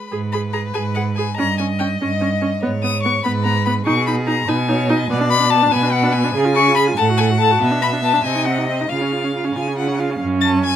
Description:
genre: quick classical-period movement for string quartet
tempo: 96 BPM (dotted quarters)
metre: 6/8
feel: straight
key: G# minor, F# minor from 5.1 s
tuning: A4 = 442 Hz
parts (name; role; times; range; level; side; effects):
- clear violin; melody; 0.0-10.8 s; D#5 to A6; -20 LUFS; left 6 dB; none
- clear violin; second line; 0.0-10.8 s; G#4 to A5; -25 LUFS; left 3 dB; none
- warm viola; accompaniment; 0.1-10.8 s; B3 to A4; -22 LUFS; right 3 dB; none
- clear cello; bass; 0.1-10.8 s; F#2 to C#3; -20 LUFS; right 3 dB; none
room: little or no reverb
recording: close, detailed microphones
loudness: -15 LUFS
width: side -10 dB against mid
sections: 0.1-10.2 A section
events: none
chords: 0.1 G#m; 1.4 D#7/G; 2.6 G#m; 3.9 G#m/B; 5.1 Bm6; 6.4 C#; 7.0 F#m/A; 7.6 Bm; 8.2 Cdim; 8.9 C#; 10.2 F#5

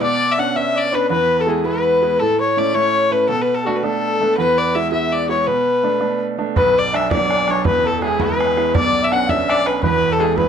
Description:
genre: celtic folk, Celtic jig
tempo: 110 BPM (dotted quarters)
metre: 6/8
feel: straight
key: B dorian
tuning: A4 = 440 Hz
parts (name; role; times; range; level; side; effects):
- warm fiddle; melody; 0.0-10.5 s; F#4 to F#5; -18 LUFS; left 3 dB; none
- mellow flugelhorn; second line; 0.0-10.5 s; F#4 to F#5; -22 LUFS; left 3 dB; none
- bright grand piano; accompaniment; 0.0-10.5 s; E1 to E4; -21 LUFS; right 5 dB; none
- bodhran; percussion; 6.6-10.5 s; none; -23 LUFS; right 3 dB; none
room: wet studio reverb, RT60 0.6 s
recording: none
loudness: -15 LUFS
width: side -7 dB against mid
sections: 0.0-6.6 A section; 6.6-10.5 A section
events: none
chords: 0.0 Bmadd9; 1.1 E; 2.2 A; 3.3 Bm7; 4.4 E; 5.5 Bm7; 6.6 Bm; 7.7 E; 8.7 Bmadd9; 9.8 E

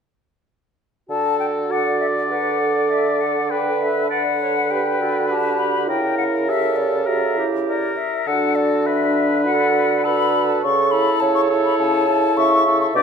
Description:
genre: quick classical-period movement for wind quintet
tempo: 101 BPM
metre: 4/4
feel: rubato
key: D major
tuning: A4 = 438 Hz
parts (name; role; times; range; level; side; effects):
- mellow silver concert flute; melody; 1.1-13.0 s; D5 to D6; -22 LUFS; left 6 dB; none
- warm oboe; second line; 1.1-13.0 s; G4 to D5; -24 LUFS; left 2 dB; none
- clear French horn; accompaniment; 1.1-13.0 s; D4 to A4; -25 LUFS; equal; none
- warm clarinet; accompaniment; 1.1-13.0 s; F#4 to E5; -24 LUFS; right 8 dB; none
- warm bassoon; bass; 1.1-13.0 s; B2 to D3; -23 LUFS; right 3 dB; none
room: wet recital hall reverb, RT60 1.4 s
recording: none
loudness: -17 LUFS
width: side -6 dB against mid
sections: 1.1-13.0 A section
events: none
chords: 1.1 D; 3.5 Gmaj9/D; 5.9 C#dim7; 8.3 D; 10.6 A/C#

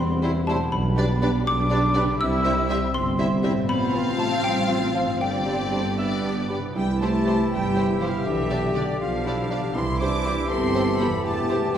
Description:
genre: cinematic, playful, whimsical film cue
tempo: 80 BPM (dotted quarters)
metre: 6/8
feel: straight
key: C major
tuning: A4 = 440 Hz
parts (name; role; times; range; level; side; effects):
- xylophone with rubber mallets; melody; 0.0-5.9 s; F5 to E6; -30 LUFS; left 2 dB; none
- mellow hollow silver concert flute; second line; 0.0-11.8 s; D5 to E6; -31 LUFS; left 1 dB; none
- dark French horn section; sustained chords; 0.0-11.8 s; D3 to G4; -29 LUFS; left 4 dB; none
- concert harp; arpeggios; 0.0-11.8 s; E2 to E5; -33 LUFS; left 4 dB; none
- dark symphonic cello section; bass; 0.0-11.8 s; D3 to E4; -29 LUFS; right 2 dB; none
- mellow tuba; bass; 0.0-11.8 s; E1 to C2; -30 LUFS; right 2 dB; none
- rich studio double bass section; bass; 0.0-11.8 s; G1 to E2; -29 LUFS; right 2 dB; none
- rich studio violin section; melody; 0.2-11.8 s; C5 to F5; -33 LUFS; left 1 dB; none
- clear clarinet; second line; 0.2-11.8 s; D4 to G4; -34 LUFS; left 3 dB; none
- dark cor anglais; second line; 0.2-11.8 s; D4 to E5; -33 LUFS; right 2 dB; none
- warm studio violin section; second line; 0.2-11.8 s; F4 to D6; -35 LUFS; left 1 dB; none
- dark bassoon; accompaniment; 0.2-11.8 s; D3 to G3; -32 LUFS; right 3 dB; none
- rich studio viola section; accompaniment; 0.2-11.8 s; B3 to G4; -34 LUFS; equal; none
room: wet recital hall reverb, RT60 1.7 s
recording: none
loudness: -20 LUFS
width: side -9 dB against mid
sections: 0.0-6.8 A section; 6.8-11.8 B section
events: none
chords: 0.0 C/E; 0.7 G/B; 2.2 C; 3.7 F/A; 5.2 Gsus4; 6.0 G; 6.8 C; 8.3 G7/B; 9.8 C; 11.2 C/E

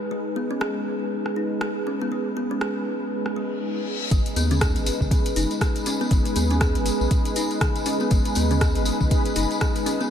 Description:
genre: afro house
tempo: 120 BPM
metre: 4/4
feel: swing 58% on 16ths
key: G# minor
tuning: A4 = 440 Hz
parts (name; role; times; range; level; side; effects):
- warm analog pad; sustained chords; 0.0-10.1 s; G#3 to B4; -27 LUFS; equal; chorus, sidechain pumping
- kalimba; arpeggios; 0.1-10.1 s; G#3 to G#4; -28 LUFS; left 1 dB; sidechain pumping, analog delay
- afro-pop drum kit; drums; 0.6-10.0 s; hi-hat, rim click, toms; -31 LUFS; equal; low-pass filter on cymbals, studio reverb, low-pass filter on snare, low-pass filter on hats, low-pass filter on toms
- reverse cymbal; sound effects; 3.6-4.1 s; none; -37 LUFS; left 5 dB; none
- round analog bass; bass; 4.1-9.5 s; F#1 to D#2; -24 LUFS; equal; tube saturation, sidechain pumping
- electronic kick drum; drums; 4.1-9.7 s; none; -22 LUFS; equal; studio reverb
- tambourine; percussion; 4.1-10.1 s; none; -32 LUFS; left 2 dB; none
room: moderate cathedral reverb, RT60 6.3 s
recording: dreamy mix soaked in reverb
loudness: -21 LUFS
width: side -9 dB against mid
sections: 0.0-4.1 A section; 4.1-10.1 B section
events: reverse cymbal 3.6-4.1; drop 4.1-10.1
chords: 0.0 G#m

